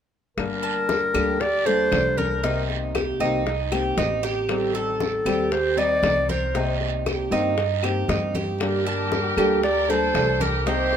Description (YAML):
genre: latin, Cuban son and guajira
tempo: 117 BPM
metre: 4/4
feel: straight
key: G minor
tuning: A4 = 437 Hz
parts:
  - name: warm clarinet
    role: melody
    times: 0.4-11.0 s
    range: A4 to D5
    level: -24 LUFS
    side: equal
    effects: none
  - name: nylon-string guitar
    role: accompaniment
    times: 0.4-11.0 s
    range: C3 to A4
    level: -27 LUFS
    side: left 4 dB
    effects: none
  - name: upright bass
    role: bass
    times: 0.4-11.0 s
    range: G1 to G2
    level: -29 LUFS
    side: equal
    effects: none
  - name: bongos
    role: percussion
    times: 0.4-11.0 s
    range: none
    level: -32 LUFS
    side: left 7 dB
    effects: none
  - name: claves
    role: percussion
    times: 0.4-10.4 s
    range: none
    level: -35 LUFS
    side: left 5 dB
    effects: none
  - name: congas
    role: percussion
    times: 0.4-11.0 s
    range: none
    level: -33 LUFS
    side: equal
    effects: none
  - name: guiro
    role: percussion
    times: 0.4-11.0 s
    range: none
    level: -37 LUFS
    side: right 9 dB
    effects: none
  - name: Cuban tres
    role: arpeggios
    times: 0.6-11.0 s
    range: Eb4 to A5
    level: -26 LUFS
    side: right 5 dB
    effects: none
  - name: rich studio violin section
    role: second line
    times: 8.6-11.0 s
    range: G4 to Bb4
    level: -28 LUFS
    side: right 2 dB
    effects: none
room: light reverb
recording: minimal, uncompressed stereo recording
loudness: -20 LUFS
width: side -8 dB against mid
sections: 0.4-11.0 A section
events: none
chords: 0.4 Gmadd9; 2.4 Am7b5; 6.5 Cm7; 8.6 Gmadd9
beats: | 0.37 0.89 1.40 1.92 | 2.43 2.95 3.46 3.97 | 4.49 5.00 5.52 6.03 | 6.54 7.06 7.57 8.09 | 8.60 9.12 9.63 10.15 | 10.66